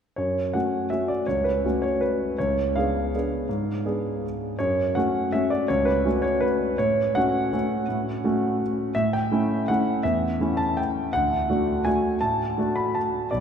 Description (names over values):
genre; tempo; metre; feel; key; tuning
classical, piano waltz; 164 BPM; 3/4; uneven beats, rubato; F# minor; A4 = 438 Hz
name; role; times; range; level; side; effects
warm concert grand piano; solo; 0.2-13.4 s; B1 to B5; -22 LUFS; equal; none
room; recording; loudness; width
wet cathedral reverb, RT60 6.0 s; recorded in a church or concert hall; -22 LUFS; side -7 dB against mid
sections
0.2-13.4 A section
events
none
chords
0.2 F#m; 2.4 C#7b9; 4.6 F#m; 6.8 F#m/A; 9.0 A7; 11.1 D